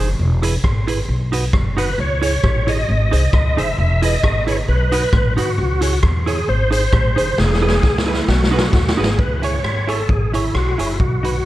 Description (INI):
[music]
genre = ska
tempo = 133 BPM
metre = 4/4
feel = swing 54% on 8ths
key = C# minor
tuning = A4 = 440 Hz
[part]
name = semi-hollow electric guitar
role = accompaniment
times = 0.0-11.4 s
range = D#4 to C#5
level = -25 LUFS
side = right 4 dB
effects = none
[part]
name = upright bass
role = bass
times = 0.0-11.4 s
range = E1 to E2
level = -19 LUFS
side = equal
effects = none
[part]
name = raw garage drum kit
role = drums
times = 0.4-11.3 s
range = hi-hat, kick drum, rim click, snare drum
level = -20 LUFS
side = equal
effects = none
[part]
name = bright tonewheel organ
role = melody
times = 1.8-11.5 s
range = E4 to E5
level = -21 LUFS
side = equal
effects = chorus vibrato, fast rotary speaker, tape echo
[sound]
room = little or no reverb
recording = none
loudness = -15 LUFS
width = side -15 dB against mid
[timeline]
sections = 0.0-9.2 A section; 9.2-11.5 B section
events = drum fill 7.4-9.2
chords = 0.2 E; 1.1 B; 2.0 C#m; 2.9 G#; 3.8 E; 4.7 B; 5.6 C#m; 6.5 G#; 7.4 E; 8.3 B; 9.2 C#m